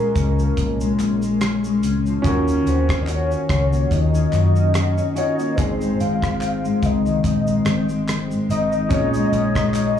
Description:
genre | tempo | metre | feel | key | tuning
indie pop, bedroom pop | 72 BPM | 4/4 | swing 55% on 16ths | Bb minor | A4 = 441 Hz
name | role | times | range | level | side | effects
soft octave-layered synth lead | melody | 0.0-10.0 s | Bb4 to F5 | -25 LUFS | left 2 dB | tremolo, ensemble chorus, slapback echo, tape echo
mellow electric guitar | accompaniment | 0.0-10.0 s | Ab2 to Gb4 | -22 LUFS | left 4 dB | analog chorus, vibrato effect
warm upright piano | accompaniment | 0.0-10.0 s | C4 to Eb5 | -27 LUFS | right 3 dB | slapback echo
vintage muted picked electric bass | bass | 0.2-10.0 s | Ab1 to Gb2 | -22 LUFS | equal | none
damped 70s drum kit | drums | 0.2-10.0 s | hi-hat, kick drum, rim click, shaker | -25 LUFS | equal | none
group handclap | percussion | 1.0-10.0 s | none | -38 LUFS | left 3 dB | slapback echo
room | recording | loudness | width
studio ambience | live gig heard through the venue's PA, club reverb | -17 LUFS | side -9 dB against mid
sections
0.0-10.0 A section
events
none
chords
0.0 Bbm7; 2.2 Ebm7; 5.6 Ab; 8.9 Bbm7

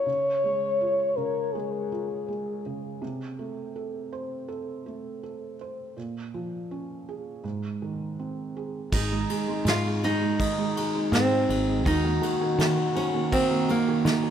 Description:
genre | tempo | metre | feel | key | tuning
acoustic folk-pop ballad | 82 BPM | 4/4 | straight | unclear | A4 = 440 Hz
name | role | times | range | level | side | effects
mellow French horn | second line | 0.0-2.6, 8.9-14.3 s | Eb4 to Db5 | -28 LUFS | left 3 dB | tape echo
felt-muted upright piano | accompaniment | 0.0-14.3 s | Ab2 to C5 | -33 LUFS | right 3 dB | none
nylon-string guitar | melody | 8.9-14.3 s | Bb3 to F4 | -27 LUFS | right 2 dB | none
Celtic harp | arpeggios | 8.9-14.3 s | Eb3 to Gb4 | -31 LUFS | right 7 dB | none
fingered electric bass | bass | 8.9-14.3 s | Ab1 to Eb3 | -29 LUFS | equal | none
soft brush drum kit | drums | 8.9-14.2 s | crash cymbal, kick drum, ride cymbal, snare drum | -31 LUFS | equal | none
room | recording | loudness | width
moderate scoring stage reverb, RT60 1.9 s | none | -24 LUFS | side -9 dB against mid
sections
0.0-8.9 A section; 8.9-14.3 B section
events
French horn solo 0.0-8.9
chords
0.1 Db; 3.0 Am/C; 6.0 Bbm7; 7.4 Ab; 8.9 Ab7; 11.9 Ebm7

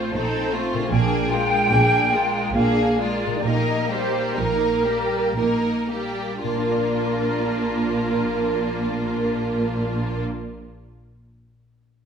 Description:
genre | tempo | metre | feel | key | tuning
classical | 54-77 BPM | 3/4 | rubato | Bb major | A4 = 440 Hz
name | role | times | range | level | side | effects
clear symphonic violin section | melody | 0.0-10.2 s | F4 to Bb4 | -28 LUFS | left 1 dB | none
flute section | second line | 0.0-10.2 s | Bb4 to G5 | -24 LUFS | right 1 dB | none
rich studio violin section | second line | 0.0-10.2 s | Bb3 to Eb4 | -30 LUFS | equal | none
clear symphonic viola section | accompaniment | 0.0-10.2 s | G3 to C4 | -28 LUFS | right 2 dB | none
concert harp | arpeggios | 0.0-10.7 s | Bb2 to D5 | -32 LUFS | left 5 dB | none
rich symphonic cello section | bass | 0.1-10.2 s | Bb2 | -28 LUFS | right 1 dB | none
rich symphonic double bass section | bass | 0.1-10.2 s | Bb1 | -28 LUFS | right 3 dB | none
room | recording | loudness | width
wet recital hall reverb, RT60 1.5 s | minimal, uncompressed stereo recording | -19 LUFS | side -7 dB against mid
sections
0.0-6.4 A section; 6.4-9.5 B section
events
slowing down 0.0-6.4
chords
0.0 F7/Bb; 0.9 Bb7; 3.4 Eb/Bb; 6.4 Bb

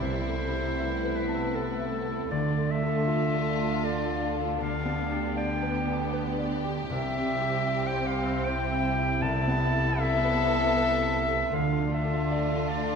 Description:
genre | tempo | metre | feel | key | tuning
cinematic, emotional film score for orchestra | 78 BPM | 3/4 | rubato | unclear | A4 = 443 Hz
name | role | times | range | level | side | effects
muted studio violin section | melody | 0.0-13.0 s | E4 to A4 | -35 LUFS | left 2 dB | none
clear clarinet | second line | 0.0-13.0 s | A4 to A5 | -30 LUFS | left 2 dB | none
muted symphonic violin section | second line | 0.0-13.0 s | B3 to E4 | -37 LUFS | left 2 dB | none
muted studio viola section | accompaniment | 0.0-13.0 s | A3 to C4 | -36 LUFS | right 2 dB | none
warm grand piano | accompaniment | 0.0-13.0 s | C2 to A5 | -33 LUFS | equal | none
concert harp | arpeggios | 0.0-13.0 s | C3 to F6 | -35 LUFS | left 5 dB | none
muted studio cello section | bass | 0.0-13.0 s | C3 to D3 | -35 LUFS | right 3 dB | none
muted studio double bass section | bass | 0.0-13.0 s | C2 to D2 | -34 LUFS | right 4 dB | none
room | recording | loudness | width
wet scoring stage reverb, RT60 1.9 s | none | -25 LUFS | side -6 dB against mid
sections
0.0-13.0 A section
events
none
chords
0.0 Amadd9/C; 2.3 Dm; 4.6 G7/D; 6.9 C; 9.2 Amadd9/C; 11.5 Dm

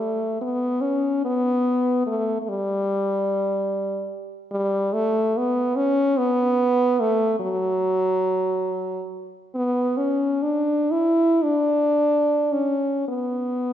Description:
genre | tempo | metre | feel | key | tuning
classical, free, expressive piece for unaccompanied French horn | 34-50 BPM (dotted quarters) | 6/8 | rubato | unclear | A4 = 441 Hz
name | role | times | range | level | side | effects
warm French horn | solo | 0.0-13.7 s | F#3 to E4 | -20 LUFS | equal | none
room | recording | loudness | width
wet scoring stage reverb, RT60 1.6 s | nothing above 7.9 kHz | -20 LUFS | side -10 dB against mid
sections
0.0-13.7 A section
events
none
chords
none

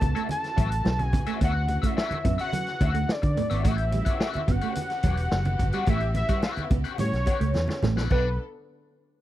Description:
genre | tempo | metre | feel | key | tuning
funk | 108 BPM | 4/4 | straight | unclear | A4 = 439 Hz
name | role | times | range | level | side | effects
fat analog lead | melody | 0.0-8.4 s | B4 to A5 | -30 LUFS | equal | none
electric guitar at the edge of break-up | accompaniment | 0.0-8.3 s | F#4 to F#5 | -35 LUFS | left 9 dB | wah
clear studio string section | sustained chords | 0.0-8.4 s | C#3 to A4 | -40 LUFS | left 1 dB | none
mellow electric guitar | riff | 0.0-8.3 s | F#3 to B3 | -33 LUFS | right 6 dB | none
fingered electric bass with an envelope filter | bass | 0.0-8.4 s | E1 to D3 | -26 LUFS | equal | none
vintage drum kit | drums | 0.0-8.2 s | crash cymbal, hi-hat, kick drum, snare drum | -27 LUFS | equal | none
congas | percussion | 0.0-8.4 s | none | -34 LUFS | right 3 dB | none
room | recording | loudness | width
little or no reverb | dry, close 1970s-style studio recording | -23 LUFS | side -14 dB against mid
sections
0.0-8.1 A section; 8.1-9.2 B section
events
drum fill 7.5-8.1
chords
0.0 Dmaj9; 3.6 A13; 8.1 Bm7

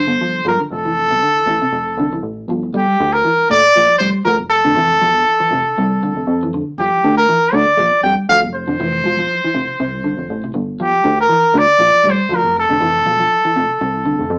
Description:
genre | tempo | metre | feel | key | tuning
afrobeat | 119 BPM | 4/4 | swing 53% on 16ths | G dorian | A4 = 440 Hz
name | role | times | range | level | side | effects
clear trumpet | melody | 0.0-14.4 s | G4 to G5 | -16 LUFS | equal | none
electric guitar at the edge of break-up | arpeggios | 0.0-14.3 s | Bb2 to G3 | -24 LUFS | equal | phaser, tape echo
chorused synth bass | bass | 0.0-14.4 s | E1 to F2 | -24 LUFS | equal | none
room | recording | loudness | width
moderate studio ambience, RT60 0.5 s | rough rehearsal-room recording, small speaker sound | -15 LUFS | mono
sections
0.0-2.8 A section; 2.8-14.4 B section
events
none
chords
0.0 G5; 0.7 Fmaj7; 2.8 Gm7; 4.8 Fmaj7; 6.8 G7(no3); 8.8 Fmaj7(no3); 10.8 Gm7; 12.8 Fmaj7

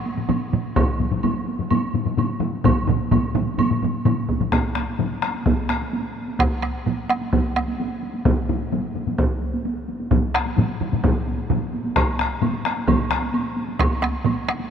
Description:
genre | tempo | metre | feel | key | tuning
japanese traditional, taiko drum ensemble | 129 BPM | 4/4 | straight | none | none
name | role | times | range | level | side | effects
taiko ensemble | percussion | 0.1-14.7 s | none | -25 LUFS | right 2 dB | none
taiko ensemble | percussion | 0.2-14.6 s | none | -25 LUFS | right 3 dB | none
woodblock | percussion | 0.3-4.2, 12.0-14.4 s | none | -32 LUFS | right 3 dB | none
solo taiko drums | percussion | 0.8-13.9 s | none | -25 LUFS | right 1 dB | none
taiko ensemble | percussion | 0.8-13.2 s | none | -24 LUFS | left 5 dB | none
room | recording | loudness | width
moderate huge ambient reverb, RT60 5.2 s | minimal, uncompressed stereo recording | -20 LUFS | side -8 dB against mid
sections
0.0-4.5 A section; 4.5-14.7 B section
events
speeding up 0.0-14.7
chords
none

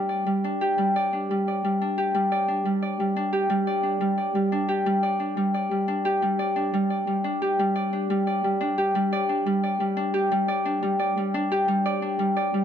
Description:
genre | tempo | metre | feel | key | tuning
folktronica | 88 BPM | 4/4 | straight | unclear | A4 = 440 Hz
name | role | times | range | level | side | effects
Celtic harp | solo | 0.0-12.6 s | G3 to D5 | -22 LUFS | equal | tape echo
room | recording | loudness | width
moderate studio reverb, RT60 0.6 s | nothing above 10.9 kHz | -22 LUFS | side -8 dB against mid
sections
0.0-8.1 A section; 8.1-12.6 B section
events
none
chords
0.0 G5

